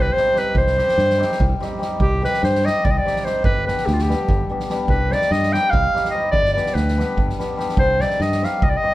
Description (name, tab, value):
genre	balkan folk, Balkan wedding band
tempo	291 BPM (eighths)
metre	7/8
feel	straight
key	C harmonic minor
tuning	A4 = 440 Hz
part	clear clarinet	melody	0.0-8.9 s	F4 to G5	-20 LUFS	equal	none
part	cimbalom	accompaniment	0.0-8.9 s	G3 to G4	-25 LUFS	left 3 dB	none
part	modern bright fingered electric bass	bass	0.0-8.8 s	G1 to G2	-22 LUFS	equal	none
part	soft-mallet drum kit	percussion	0.2-8.7 s	kick drum, snare drum	-23 LUFS	right 1 dB	none
room	moderate studio reverb, RT60 0.6 s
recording	heard from further back in the room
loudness	-17 LUFS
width	side -16 dB against mid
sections	0.0-2.0 A section; 2.0-8.9 A section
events	none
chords	0.0 Cm; 3.4 G; 4.9 Cm; 6.3 G; 7.8 Cm